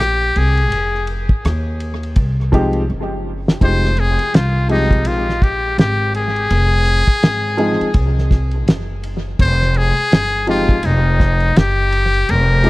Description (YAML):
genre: hip hop, jazz-hop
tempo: 83 BPM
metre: 4/4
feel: swing 60% on 16ths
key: F minor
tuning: A4 = 439 Hz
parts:
  - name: trumpet with metal mute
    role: melody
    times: 0.0-12.7 s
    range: Eb4 to C5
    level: -18 LUFS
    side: left 2 dB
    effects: tape echo
  - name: upright bass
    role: bass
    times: 0.0-12.7 s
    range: F1 to Eb2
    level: -17 LUFS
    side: equal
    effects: none
  - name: cloth-damped thuddy drum kit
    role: drums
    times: 0.0-12.7 s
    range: hi-hat, kick drum, ride cymbal, rim click, snare drum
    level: -16 LUFS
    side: equal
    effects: tape echo
  - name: clear upright piano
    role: accompaniment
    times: 2.5-12.7 s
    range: F3 to Ab4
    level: -20 LUFS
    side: equal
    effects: tape echo
room: little or no reverb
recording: echo-heavy mix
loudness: -13 LUFS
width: side -20 dB against mid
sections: 0.0-3.6 A section; 3.6-12.7 B section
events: drum fill 2.9-3.6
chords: 0.0 F7(no3); 3.6 Fm9